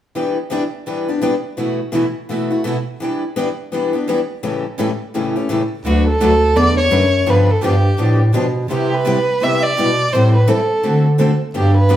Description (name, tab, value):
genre	acoustic string swing (jazz manouche)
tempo	168 BPM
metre	4/4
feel	swing 61% on 8ths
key	D major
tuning	A4 = 441 Hz
part	picked steel-string acoustic guitar	accompaniment	0.2-12.0 s	A2 to B4	-20 LUFS	left 3 dB	none
part	picked steel-string acoustic guitar	accompaniment	0.2-12.0 s	A2 to B4	-24 LUFS	right 2 dB	none
part	warm violin	melody	5.9-12.0 s	F#4 to E5	-17 LUFS	right 1 dB	none
part	mellow bass clarinet	bass	5.9-12.0 s	D2 to D3	-15 LUFS	equal	none
room	wet studio reverb, RT60 0.9 s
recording	heard from further back in the room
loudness	-14 LUFS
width	side -11 dB against mid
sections	0.2-5.9 A section; 5.9-12.0 B section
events	none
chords	0.2 Em7; 1.6 B7sus4; 3.0 Em7; 4.4 A7; 5.9 D6; 7.3 G9; 8.7 Cmaj9; 10.1 Am7; 10.8 D7